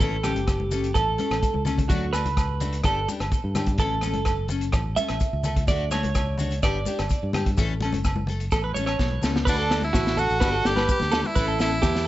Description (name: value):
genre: highlife guitar band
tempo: 127 BPM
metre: 4/4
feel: straight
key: unclear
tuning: A4 = 440 Hz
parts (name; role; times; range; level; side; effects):
- picked steel-string acoustic guitar; accompaniment; 0.0-11.8 s; E3 to A4; -32 LUFS; left 6 dB; none
- clean electric guitar; arpeggios; 0.0-12.1 s; F#4 to E5; -27 LUFS; right 4 dB; lush chorus, tape echo
- fingered electric bass; bass; 0.0-12.1 s; F#1 to G2; -28 LUFS; equal; none
- vintage drum kit; drums; 0.0-12.1 s; crash cymbal, hi-hat, kick drum, rim click, snare drum; -26 LUFS; equal; none
- congas; percussion; 0.0-11.9 s; none; -33 LUFS; left 3 dB; none
- maracas; percussion; 0.0-12.0 s; none; -42 LUFS; left 10 dB; none
- agogo bells; percussion; 0.2-11.9 s; none; -36 LUFS; right 2 dB; none
- edgy tenor saxophone; melody; 9.5-12.0 s; D4 to G4; -26 LUFS; equal; none
room: light reverb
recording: nothing above 7.8 kHz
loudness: -21 LUFS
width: side -15 dB against mid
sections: 0.0-9.5 A section; 9.5-12.1 B section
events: clean electric guitar solo 0.0-9.5; drum fill 1.4-1.9, 9.0-9.5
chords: 0.0 A; 1.9 D; 2.8 G; 3.8 A; 5.7 D; 6.6 G; 7.6 A; 9.5 D; 10.4 G; 11.4 A